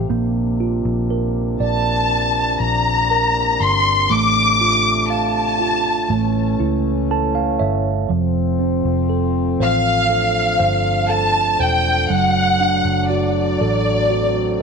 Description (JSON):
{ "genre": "pop ballad", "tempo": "60 BPM", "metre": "4/4", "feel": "straight", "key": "unclear", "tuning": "A4 = 440 Hz", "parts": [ { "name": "mellow tine electric piano", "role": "accompaniment", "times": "0.0-14.6 s", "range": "E3 to A5", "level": "-22 LUFS", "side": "right 12 dB", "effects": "none" }, { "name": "mellow French horn section", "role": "sustained chords", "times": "0.0-14.6 s", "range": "C3 to D4", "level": "-26 LUFS", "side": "left 14 dB", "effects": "none" }, { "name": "vintage muted fingered electric bass", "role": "bass", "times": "0.0-14.6 s", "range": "E1 to C#2", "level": "-22 LUFS", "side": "left 1 dB", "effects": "none" }, { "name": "warm studio violin section", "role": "melody", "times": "1.6-14.6 s", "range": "D5 to D6", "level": "-17 LUFS", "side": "left 1 dB", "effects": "slapback echo" } ], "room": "light reverb, studio ambience", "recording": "1960s-style stereo with parts hard left and right, nothing above 10.9 kHz", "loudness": "-15 LUFS", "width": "side -5 dB against mid", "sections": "0.0-8.1 A section; 8.1-14.6 B section", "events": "tine electric piano fill 6.6-8.1, 14.1-14.6", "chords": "0.1 Bb; 4.1 Dm/A; 6.1 A; 8.1 F; 12.1 D/F#", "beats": "| 0.10 1.10 2.10 3.10 | 4.10 5.10 6.10 7.10 | 8.10 9.10 10.10 11.10 | 12.10 13.10 14.10" }